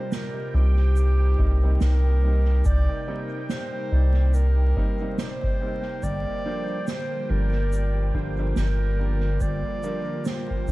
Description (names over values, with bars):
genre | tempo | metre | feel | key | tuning
ambient dub | 71 BPM | 4/4 | swing 58% on 16ths | unclear | A4 = 442 Hz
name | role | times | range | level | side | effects
mellow clarinet | melody | 0.0-10.7 s | G4 to D5 | -32 LUFS | equal | dub echo
airy breathy pad | sustained chords | 0.0-10.7 s | C3 to G4 | -34 LUFS | right 1 dB | chorus
bubbling stepped-filter texture | texture | 0.0-10.7 s | G5 | -41 LUFS | right 1 dB | chorus, built-in reverb
snare drum and shaker | drums | 0.1-10.7 s | none | -34 LUFS | right 3 dB | dub echo
warm upright piano | stabs | 0.5-10.7 s | D3 to Eb4 | -36 LUFS | equal | dub echo
soft dub sub bass | bass | 0.5-10.7 s | G1 to C2 | -20 LUFS | equal | none
electronic kick drum | drums | 1.4-10.6 s | none | -28 LUFS | equal | none
room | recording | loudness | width
small room ambience | dark, warm production, vinyl crackle | -21 LUFS | side -19 dB against mid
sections
0.0-10.7 A section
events
none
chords
0.0 Cm7; 6.0 Gm7